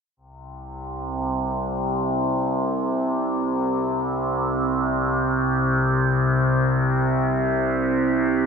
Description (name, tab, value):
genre	ambient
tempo	free time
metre	none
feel	none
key	unclear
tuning	A4 = 440 Hz
part	overtone-sweeping drone	solo	0.5-8.5 s	C2 to C3	-20 LUFS	equal	chorus, built-in reverb, phaser, ping-pong delay
room	wet huge ambient reverb, RT60 7.7 s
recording	none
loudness	-20 LUFS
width	side -6 dB against mid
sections	0.2-8.5 A section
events	none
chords	none